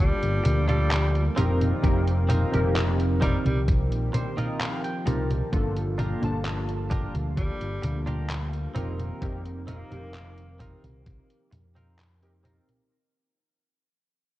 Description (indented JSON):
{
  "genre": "vaporwave",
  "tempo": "65 BPM",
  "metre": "4/4",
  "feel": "straight",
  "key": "unclear",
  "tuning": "A4 = 441 Hz",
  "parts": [
    { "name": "bright tenor saxophone", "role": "melody", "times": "0.0-10.6 s", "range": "G3 to Bb3", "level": "-34 LUFS", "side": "left 1 dB", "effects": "vintage 12-bit sampler grit, tape echo" },
    { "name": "warbly lo-fi synth keys", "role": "accompaniment", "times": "0.0-12.9 s", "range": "Bb3 to A5", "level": "-32 LUFS", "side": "equal", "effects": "lush chorus, analog delay" },
    { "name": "lush unison pad", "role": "sustained chords", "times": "0.0-12.9 s", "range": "D3 to G4", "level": "-37 LUFS", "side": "equal", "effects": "chorus, vintage 12-bit sampler grit" },
    { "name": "fingered electric bass", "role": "bass", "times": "0.0-12.6 s", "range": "F1 to F2", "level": "-26 LUFS", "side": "equal", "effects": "none" },
    { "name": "detuned 8-bit digital drum machine", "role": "drums", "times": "0.2-12.9 s", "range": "congas, handclaps, hi-hat", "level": "-31 LUFS", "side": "equal", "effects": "none" },
    { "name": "direct-recorded clean electric guitar", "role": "riff", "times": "0.4-12.7 s", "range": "C4 to A5", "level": "-36 LUFS", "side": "right 2 dB", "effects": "wide subtle chorus, analog delay" },
    { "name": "electronic kick drum", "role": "drums", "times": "1.8-11.3 s", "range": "none", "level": "-25 LUFS", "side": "equal", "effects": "none" }
  ],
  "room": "light reverb, digital ambience",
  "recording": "cassette tape",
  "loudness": "-23 LUFS",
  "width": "side -16 dB against mid",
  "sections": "0.0-12.9 A section",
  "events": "fade-out 3.1-12.9; clean electric guitar fill 3.7-5.5",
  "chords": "0.0 Gm7; 1.4 F7sus4; 5.5 Gm7; 8.8 F7sus4",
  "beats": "0.91 | 1.83 2.76 3.68 4.60 | 5.53 6.45 7.37 8.30 | 9.22 10.14 11.06 11.99"
}